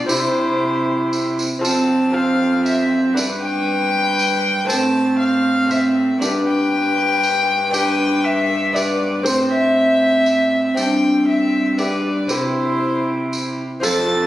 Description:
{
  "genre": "classical, renaissance-style consort dance",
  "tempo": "118 BPM",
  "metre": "3/4",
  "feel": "straight",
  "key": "C major",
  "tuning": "A4 = 440 Hz",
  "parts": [
    { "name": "warm violin", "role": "melody", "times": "0.0-14.3 s", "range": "C5 to A6", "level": "-20 LUFS", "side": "left 2 dB", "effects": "none" },
    { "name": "tenor recorder", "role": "second line", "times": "0.0-14.3 s", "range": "C4 to B4", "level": "-20 LUFS", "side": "right 2 dB", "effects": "none" },
    { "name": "lute", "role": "accompaniment", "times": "0.0-14.3 s", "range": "F2 to C5", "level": "-23 LUFS", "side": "left 2 dB", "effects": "none" },
    { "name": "rich cello", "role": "bass", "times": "0.0-14.3 s", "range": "F2 to C3", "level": "-26 LUFS", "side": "right 1 dB", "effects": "none" },
    { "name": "tambourine", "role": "percussion", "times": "0.1-14.1 s", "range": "none", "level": "-27 LUFS", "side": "right 2 dB", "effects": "none" }
  ],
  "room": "wet recital hall reverb, RT60 1.9 s",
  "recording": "recorded on a phone in the room, studio reverb",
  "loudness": "-15 LUFS",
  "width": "side -14 dB against mid",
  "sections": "0.0-1.6 A section; 1.6-13.8 B section",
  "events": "none",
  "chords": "0.1 C; 1.6 F; 3.2 G; 4.7 Am; 6.2 G; 9.3 Am; 10.8 Gsus4; 11.8 G; 12.3 C"
}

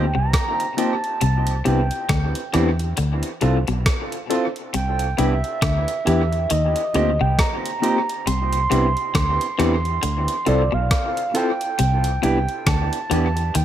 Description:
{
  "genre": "lovers rock reggae",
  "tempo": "68 BPM",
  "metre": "4/4",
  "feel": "swing 59% on 16ths",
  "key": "C major",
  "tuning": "A4 = 440 Hz",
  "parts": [
    { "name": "reedy FM lead", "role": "melody", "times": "0.0-13.6 s", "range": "D5 to C6", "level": "-24 LUFS", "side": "right 3 dB", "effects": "chorus, tremolo, tape echo" },
    { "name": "mellow tine electric piano", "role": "accompaniment", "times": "0.0-13.4 s", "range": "Bb3 to A4", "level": "-26 LUFS", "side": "left 3 dB", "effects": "overdrive, medium stereo tremolo, dub echo" },
    { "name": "clean electric guitar", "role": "riff", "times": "0.0-13.6 s", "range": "B2 to E3", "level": "-29 LUFS", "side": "left 7 dB", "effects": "spring reverb, dub echo" },
    { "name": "electric guitar through a small old amp", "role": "stabs", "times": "0.0-13.4 s", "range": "C4 to C5", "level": "-28 LUFS", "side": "right 4 dB", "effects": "warbly pitch drift, dub echo" },
    { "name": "vintage muted fingered electric bass", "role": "bass", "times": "0.0-13.6 s", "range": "B1 to E2", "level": "-21 LUFS", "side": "equal", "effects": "none" },
    { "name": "clean 12-bit digital drum machine", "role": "drums", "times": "0.3-13.6 s", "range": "hi-hat, kick drum, rim click", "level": "-25 LUFS", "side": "equal", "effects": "overdrive, dub echo" }
  ],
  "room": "little or no reverb",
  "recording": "none",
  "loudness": "-18 LUFS",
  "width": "side -11 dB against mid",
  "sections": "0.0-13.6 A section",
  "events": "none",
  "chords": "0.0 Eb6; 1.2 Cmaj7; 3.0 Dm7; 4.7 Cmaj7; 6.5 Eb6; 8.3 Cmaj7; 10.0 Dm7; 11.8 Cmaj7"
}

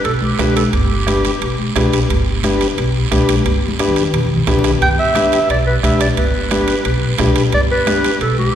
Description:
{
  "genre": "latin, cumbia",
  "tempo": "177 BPM",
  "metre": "4/4",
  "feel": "straight",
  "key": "G major",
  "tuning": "A4 = 438 Hz",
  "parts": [
    { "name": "breathy clarinet", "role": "melody", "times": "0.0-1.7, 4.8-8.6 s", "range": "G4 to G5", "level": "-18 LUFS", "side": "right 1 dB", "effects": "none" },
    { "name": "upright bass", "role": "bass", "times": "0.0-8.5 s", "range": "G1 to B1", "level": "-19 LUFS", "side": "equal", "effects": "none" },
    { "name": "congas", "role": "percussion", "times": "0.0-8.6 s", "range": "none", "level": "-23 LUFS", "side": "equal", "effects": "none" },
    { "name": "guiro", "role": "percussion", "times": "0.0-8.6 s", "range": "none", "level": "-27 LUFS", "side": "right 6 dB", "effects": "none" },
    { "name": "timbales", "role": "percussion", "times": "0.0-8.4 s", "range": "none", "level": "-25 LUFS", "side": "right 6 dB", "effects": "none" },
    { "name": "combo organ", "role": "accompaniment", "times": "0.4-8.1 s", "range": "D4 to B4", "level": "-19 LUFS", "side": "left 3 dB", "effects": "none" },
    { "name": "bombo", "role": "percussion", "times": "0.4-8.0 s", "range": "none", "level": "-22 LUFS", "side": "right 1 dB", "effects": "none" }
  ],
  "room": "wet concert hall reverb, RT60 2.2 s",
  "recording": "recorded in a church or concert hall",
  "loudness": "-13 LUFS",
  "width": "side -10 dB against mid",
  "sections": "0.0-8.6 A section",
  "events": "drum fill 3.5-4.8",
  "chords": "0.0 G"
}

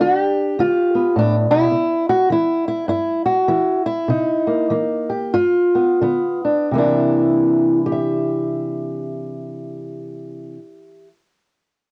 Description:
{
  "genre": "acoustic country blues, solo or duo",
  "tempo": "84-105 BPM",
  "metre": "4/4",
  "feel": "swing 61% on 8ths",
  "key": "C mixolydian",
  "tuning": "A4 = 442 Hz",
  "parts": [
    { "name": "fingerpicked old ladder-braced acoustic guitar", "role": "solo", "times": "0.0-11.1 s", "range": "G2 to E5", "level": "-19 LUFS", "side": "equal", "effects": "cassette tape" }
  ],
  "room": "light reverb",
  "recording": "home recording on cassette",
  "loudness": "-18 LUFS",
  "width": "mono",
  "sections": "0.0-6.7 A section; 6.7-9.6 B section",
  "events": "slowing down 1.7-6.7",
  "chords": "0.0 G7; 1.7 C7; 5.4 G7; 6.7 C9"
}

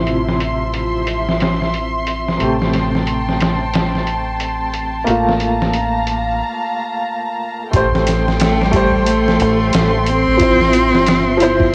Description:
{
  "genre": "trip hop",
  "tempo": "90 BPM",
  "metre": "4/4",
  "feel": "swing 59% on 16ths",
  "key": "A phrygian",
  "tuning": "A4 = 441 Hz",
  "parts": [
    { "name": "clear upright piano", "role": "accompaniment", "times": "0.0-11.7 s", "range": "C3 to C5", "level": "-22 LUFS", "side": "equal", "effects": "tremolo, cassette tape" },
    { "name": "muted studio string section", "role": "sustained chords", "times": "0.0-11.7 s", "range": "F3 to C6", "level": "-24 LUFS", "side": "equal", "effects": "cassette tape" },
    { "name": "deep dub fingered electric bass", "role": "bass", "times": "0.0-11.7 s", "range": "G1 to A1", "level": "-24 LUFS", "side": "equal", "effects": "none" },
    { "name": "trip hop sampler-style drum kit", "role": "drums", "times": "0.1-11.7 s", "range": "hi-hat, kick drum, snare drum", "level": "-21 LUFS", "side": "equal", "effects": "low-pass filter on snare, cassette tape, low-pass filter on hats, low-pass filter on kick" },
    { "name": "clear cello", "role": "melody", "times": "8.4-11.7 s", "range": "G3 to C4", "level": "-18 LUFS", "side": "equal", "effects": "cassette tape, tape echo" }
  ],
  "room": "moderate booth ambience, RT60 0.2 s",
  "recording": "home recording on cassette",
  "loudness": "-16 LUFS",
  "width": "mono",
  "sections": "0.0-7.7 A section; 7.7-11.7 B section",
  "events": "filter sweep on string section 0.0-7.7; break 6.4-7.7",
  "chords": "0.0 Fmaj7/A; 2.4 Am7; 5.1 Fadd11/A; 7.7 Am7; 10.4 Fmaj9"
}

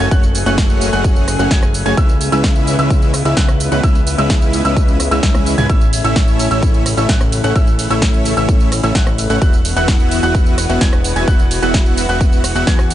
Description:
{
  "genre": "EDM, festival progressive house",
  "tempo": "129 BPM",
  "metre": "4/4",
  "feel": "straight",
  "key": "E major",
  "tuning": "A4 = 441 Hz",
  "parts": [
    { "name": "lush unison pad", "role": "sustained chords", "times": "0.0-12.9 s", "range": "C#3 to G#4", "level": "-23 LUFS", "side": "left 2 dB", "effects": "chorus, sidechain pumping" },
    { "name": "dark grand piano", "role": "arpeggios", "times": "0.0-12.8 s", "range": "E6 to G#6", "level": "-23 LUFS", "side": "right 2 dB", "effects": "sidechain pumping, ping-pong delay" },
    { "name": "dense compressed supersaw", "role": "riff", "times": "0.0-12.8 s", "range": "G#3 to G#5", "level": "-20 LUFS", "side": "equal", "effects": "sidechain pumping, ping-pong delay" },
    { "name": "fat analog bass", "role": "bass", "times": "0.0-12.9 s", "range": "E1 to E2", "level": "-19 LUFS", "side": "equal", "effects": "sidechain pumping" },
    { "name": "big-room dance drum kit", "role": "drums", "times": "0.0-12.9 s", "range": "hi-hat, ride cymbal, rim click, snare drum, tambourine, toms", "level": "-22 LUFS", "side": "right 1 dB", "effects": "none" },
    { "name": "electronic kick drum", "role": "drums", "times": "0.1-12.8 s", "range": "none", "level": "-13 LUFS", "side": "equal", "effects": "none" }
  ],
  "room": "little or no reverb",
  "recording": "nothing above 10.3 kHz",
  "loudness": "-11 LUFS",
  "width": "side -12 dB against mid",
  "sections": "0.0-12.9 A section",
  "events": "drum fill 5.2-5.7",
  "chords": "0.0 F#m; 2.0 C#m7; 5.7 A; 9.4 Esus2"
}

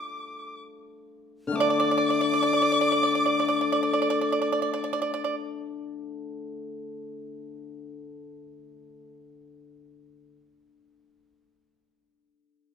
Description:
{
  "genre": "chinese traditional, Chinese chamber ensemble",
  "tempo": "60 BPM",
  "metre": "4/4",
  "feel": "rubato",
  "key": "unclear",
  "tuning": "A4 = 440 Hz",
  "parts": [
    { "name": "bright large dizi", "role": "melody", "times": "0.0-4.9 s", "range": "D6", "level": "-31 LUFS", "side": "right 2 dB", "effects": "none" },
    { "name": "clear erhu", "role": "second line", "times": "0.0-4.9 s", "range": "D6 to F6", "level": "-29 LUFS", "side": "left 4 dB", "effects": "none" },
    { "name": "pipa", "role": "second line", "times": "0.0-5.3 s", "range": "D5", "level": "-27 LUFS", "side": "right 6 dB", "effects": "none" },
    { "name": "hammered dulcimer", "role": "accompaniment", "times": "1.5-10.3 s", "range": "D3 to D4", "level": "-30 LUFS", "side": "left 5 dB", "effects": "none" }
  ],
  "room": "light reverb",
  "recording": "close, detailed microphones",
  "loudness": "-22 LUFS",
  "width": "side -7 dB against mid",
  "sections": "0.0-1.6 A section; 1.6-5.6 B section",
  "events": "slowing down 0.0-1.6",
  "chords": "none"
}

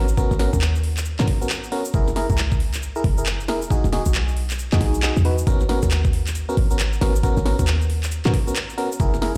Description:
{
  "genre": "UK garage, two-step garage",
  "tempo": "136 BPM",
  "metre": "4/4",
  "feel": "swing 62% on 16ths",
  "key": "G# minor",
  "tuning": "A4 = 440 Hz",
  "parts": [
    { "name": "FM electric piano", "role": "stabs", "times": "0.0-9.4 s", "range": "B3 to B4", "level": "-28 LUFS", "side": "equal", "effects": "chorus, delay" },
    { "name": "short 808-style bass", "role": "bass", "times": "0.0-9.3 s", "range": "E1 to G#2", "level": "-23 LUFS", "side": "equal", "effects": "none" },
    { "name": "cabasa", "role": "percussion", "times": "0.1-9.4 s", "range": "none", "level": "-39 LUFS", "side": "equal", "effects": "none" },
    { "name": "electronic kick drum", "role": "drums", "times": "0.2-9.1 s", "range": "none", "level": "-24 LUFS", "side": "equal", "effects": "overdrive" },
    { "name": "garage drum kit", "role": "drums", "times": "0.3-9.3 s", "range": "handclaps, hi-hat, snare drum", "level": "-30 LUFS", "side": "equal", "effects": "overdrive" }
  ],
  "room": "digital ambience",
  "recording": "played on a big sound system in a bare room, stone room reverb",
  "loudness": "-21 LUFS",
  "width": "mono",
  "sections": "0.0-9.4 A section",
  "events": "none",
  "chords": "0.0 G#m11; 1.9 F#9; 3.7 Emaj9; 5.5 G#m11"
}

